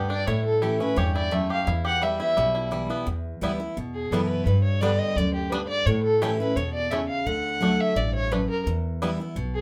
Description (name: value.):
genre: bluegrass.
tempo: 172 BPM.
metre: 4/4.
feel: straight.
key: E dorian.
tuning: A4 = 440 Hz.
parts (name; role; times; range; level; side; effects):
bluegrass banjo; melody; 0.0-9.1 s; G3 to G4; -34 LUFS; equal; none.
dark fiddle; melody; 0.0-9.6 s; G4 to F#5; -28 LUFS; equal; none.
picked steel-string acoustic guitar; accompaniment; 0.0-9.6 s; E2 to G4; -30 LUFS; equal; none.
upright bass; bass; 0.0-9.6 s; A1 to A2; -30 LUFS; equal; none.
room: moderate studio reverb, RT60 0.5 s.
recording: none.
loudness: -25 LUFS.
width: mono.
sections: 0.0-3.1 A section; 3.1-9.6 A section.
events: none.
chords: 0.3 A; 1.7 Em; 4.5 G; 5.9 A; 7.3 Dadd9; 8.7 Em.